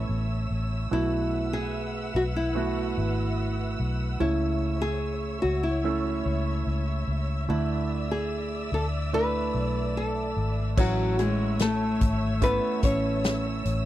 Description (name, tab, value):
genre	pop ballad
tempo	73 BPM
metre	4/4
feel	straight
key	A major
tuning	A4 = 440 Hz
part	nylon-string guitar	melody	0.0-13.6 s	F#3 to C#5	-29 LUFS	left 2 dB	tape echo
part	warm grand piano	accompaniment	0.0-13.9 s	A2 to C#5	-32 LUFS	right 7 dB	none
part	dark studio string section	sustained chords	0.0-13.9 s	B4 to E6	-36 LUFS	left 1 dB	none
part	vintage muted fingered electric bass	bass	0.0-13.9 s	G#1 to D2	-29 LUFS	left 1 dB	none
part	natural country drum kit	drums	10.8-13.8 s	crash cymbal, hi-hat, kick drum, snare drum	-26 LUFS	left 1 dB	none
room	little or no reverb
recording	dry, close 1970s-style studio recording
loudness	-24 LUFS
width	side -14 dB against mid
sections	0.0-10.8 A section; 10.8-13.9 B section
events	none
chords	0.0 A; 0.9 B7sus4; 4.2 A/C#; 7.5 Dsus2; 10.8 A